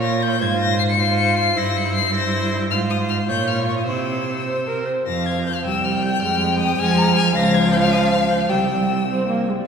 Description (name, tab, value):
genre	quick classical-period movement for string quartet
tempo	104 BPM (dotted quarters)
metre	6/8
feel	straight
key	F minor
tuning	A4 = 437 Hz
part	rich violin	melody	0.0-9.5 s	Db6 to Db7	-24 LUFS	left 6 dB	none
part	rich violin	second line	0.0-9.4 s	C5 to Bb5	-24 LUFS	left 3 dB	none
part	warm viola	accompaniment	0.0-9.6 s	F3 to C5	-23 LUFS	right 1 dB	none
part	rich cello	bass	0.0-9.5 s	C2 to F3	-21 LUFS	right 2 dB	none
room	wet concert hall reverb, RT60 2.4 s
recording	heard from further back in the room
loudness	-17 LUFS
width	side -6 dB against mid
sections	0.0-5.1 A section; 5.1-9.7 B section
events	none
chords	0.4 Fm/Ab; 1.5 C7/G; 2.7 Fm/Ab; 3.3 Bbm6; 3.9 C; 5.1 Fmadd11; 5.6 C5; 6.2 Fm; 7.3 Db; 8.5 C